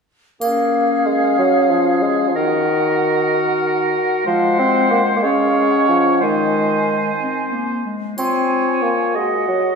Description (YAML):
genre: cinematic, playful, whimsical film cue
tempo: 62 BPM (dotted quarters)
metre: 6/8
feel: straight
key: Db major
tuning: A4 = 441 Hz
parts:
  - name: clear oboe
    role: second line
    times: 0.4-9.8 s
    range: Ab4 to Eb5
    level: -22 LUFS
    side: right 3 dB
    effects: none
  - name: flute section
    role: second line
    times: 0.4-9.8 s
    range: F5 to Ab5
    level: -24 LUFS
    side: equal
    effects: none
  - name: warm clarinet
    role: second line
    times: 0.4-9.8 s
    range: Ab3 to Gb4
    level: -21 LUFS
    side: left 2 dB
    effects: none
  - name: mellow bassoon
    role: accompaniment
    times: 0.4-9.8 s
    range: Eb3 to C4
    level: -18 LUFS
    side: equal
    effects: none
  - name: triangle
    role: percussion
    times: 0.4-1.7, 8.2-9.4 s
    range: none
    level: -34 LUFS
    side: right 1 dB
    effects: none
room: wet scoring stage reverb, RT60 2.2 s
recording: heard from further back in the room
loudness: -15 LUFS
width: side -5 dB against mid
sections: 0.4-9.8 A section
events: none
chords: 0.4 Db; 2.3 Ebm; 4.3 Ab7/F; 5.2 Db/Ab; 6.2 Ab/Eb; 8.2 Db; 9.2 Ebm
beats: | 0.41 1.38 | 2.35 3.31 | 4.26 5.23 | 6.21 7.19 | 8.18 9.15